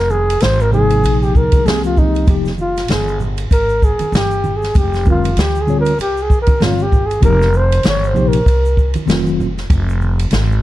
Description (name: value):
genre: hip hop, jazz-hop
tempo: 97 BPM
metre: 4/4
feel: swing 58% on 16ths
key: F minor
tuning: A4 = 445 Hz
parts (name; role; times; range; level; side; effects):
- breathy flugelhorn; melody; 0.0-8.9 s; Eb4 to Db5; -18 LUFS; equal; none
- upright bass; bass; 0.0-10.6 s; F1 to D2; -17 LUFS; equal; none
- congas and egg shaker; percussion; 0.1-10.6 s; none; -28 LUFS; right 4 dB; none
- open jazz drum kit; drums; 0.3-10.5 s; hi-hat, kick drum, ride cymbal, snare drum; -16 LUFS; equal; none
- mellow tine electric piano; accompaniment; 0.7-9.5 s; C3 to Db5; -18 LUFS; left 1 dB; medium stereo tremolo
room: little or no reverb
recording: dark, warm production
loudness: -12 LUFS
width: side -15 dB against mid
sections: 0.0-10.6 A section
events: flugelhorn solo 0.0-10.6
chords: 0.0 F5; 1.7 C7b13; 2.3 Fmadd9; 4.8 G7(no3)/F; 7.2 Cm7/F; 9.1 F7b9; 9.7 N.C.